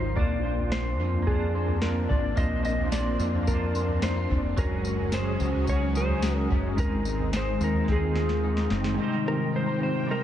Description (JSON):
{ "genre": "dream pop", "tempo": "109 BPM", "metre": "4/4", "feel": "straight", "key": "Ab mixolydian", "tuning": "A4 = 441 Hz", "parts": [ { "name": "clean lap steel guitar", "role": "melody", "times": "0.0-10.2 s", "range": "Ab4 to Eb5", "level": "-32 LUFS", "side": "equal", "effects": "dub echo" }, { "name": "string machine, violas", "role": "sustained chords", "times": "0.0-10.2 s", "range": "C3 to G5", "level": "-31 LUFS", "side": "left 1 dB", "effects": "ensemble chorus" }, { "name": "electric guitar through a small old amp", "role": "arpeggios", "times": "0.0-10.2 s", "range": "Ab2 to C5", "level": "-34 LUFS", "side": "left 4 dB", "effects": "ensemble chorus, dub echo" }, { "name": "deep dub picked electric bass", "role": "bass", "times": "0.0-9.0 s", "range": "F1 to F2", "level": "-28 LUFS", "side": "equal", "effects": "none" }, { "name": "clean electric guitar", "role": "accompaniment", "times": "0.2-10.2 s", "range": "Ab2 to C5", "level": "-35 LUFS", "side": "right 4 dB", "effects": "tremolo, analog chorus, dub echo" }, { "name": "soft vintage rhythm box", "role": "drums", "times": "0.2-9.0 s", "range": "kick drum, snare drum, tambourine, toms", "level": "-30 LUFS", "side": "equal", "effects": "none" }, { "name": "drifting glass-harmonics texture", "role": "texture", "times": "5.9-10.2 s", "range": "Eb4 to G5", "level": "-41 LUFS", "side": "right 3 dB", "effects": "chorus, built-in reverb, dub echo" } ], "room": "moderate echo chamber reverb, RT60 1.4 s", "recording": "echo-heavy mix", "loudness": "-24 LUFS", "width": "side -10 dB against mid", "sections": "0.0-9.0 A section; 9.0-10.2 B section", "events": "drum fill 7.9-9.0", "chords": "0.2 Bbadd9; 4.6 Gbsus2; 6.8 Ab; 9.0 Abmaj7" }